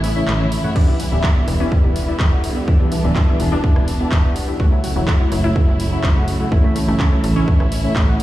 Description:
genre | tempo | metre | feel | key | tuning
progressive house | 125 BPM | 4/4 | straight | E dorian | A4 = 440 Hz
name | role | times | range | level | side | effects
warm symphonic string section | sustained chords | 0.0-8.2 s | C#3 to E4 | -24 LUFS | right 1 dB | sidechain pumping
glassy wavetable pluck | arpeggios | 0.0-8.2 s | E3 to F#4 | -27 LUFS | equal | chorus, sidechain pumping, dub echo
deep mellow chord stab | stabs | 0.0-8.2 s | A3 to F#5 | -23 LUFS | left 2 dB | chorus, sidechain pumping, dub echo
tight sequencer bass | bass | 0.0-8.2 s | D1 to A1 | -21 LUFS | equal | sidechain pumping
house drum kit | drums | 0.0-8.2 s | crash cymbal, handclaps, hi-hat, rim click, toms | -27 LUFS | equal | overdrive
electronic kick drum | drums | 0.8-8.1 s | none | -16 LUFS | equal | overdrive
room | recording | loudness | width
digital ambience | played on a big sound system in a bare room, stone room reverb, small room ambience | -14 LUFS | side -15 dB against mid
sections
0.0-8.2 A section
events
break 0.0-0.8; drum fill 0.3-0.8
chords
0.0 A; 0.8 Em7; 4.6 F#m7; 6.5 A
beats
0.28 | 0.76 1.24 1.72 2.20 | 2.68 3.16 3.64 4.12 | 4.60 5.08 5.56 6.04 | 6.52 7.00 7.48 7.96

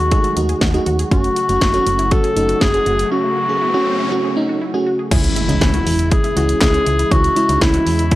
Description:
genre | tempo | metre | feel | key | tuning
synth-pop | 120 BPM | 4/4 | straight | C# minor | A4 = 440 Hz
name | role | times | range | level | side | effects
warm clarinet | melody | 0.0-8.2 s | E4 to A4 | -19 LUFS | left 2 dB | analog delay
warm analog pad | sustained chords | 0.0-8.2 s | C#3 to F#4 | -26 LUFS | equal | chorus
wide unison pluck | arpeggios | 0.0-8.2 s | C#4 to A4 | -28 LUFS | equal | analog delay
solid FM bass | bass | 0.0-8.1 s | F#1 to E2 | -20 LUFS | equal | none
FM electric piano with soft pad layer | accompaniment | 0.1-8.1 s | G#3 to G#4 | -21 LUFS | right 2 dB | chorus, tremolo
house drum kit | drums | 0.1-8.2 s | crash cymbal, handclaps, hi-hat, kick drum, snare drum | -18 LUFS | equal | none
riser and impact | sound effects | 2.5-7.1 s | none | -26 LUFS | equal | none
room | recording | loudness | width
little or no reverb | dry, gritty hardware recording | -14 LUFS | side -16 dB against mid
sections
0.0-5.1 A section; 5.1-8.2 B section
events
riser 2.5-5.1; break 3.1-5.1; impact 5.1-7.1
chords
0.0 D#dim; 1.1 F#m; 5.1 C#m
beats
0.12 0.62 | 1.12 1.62 2.12 2.62 | 3.12 3.62 4.12 4.62 | 5.12 5.62 6.12 6.62 | 7.12 7.62 8.12

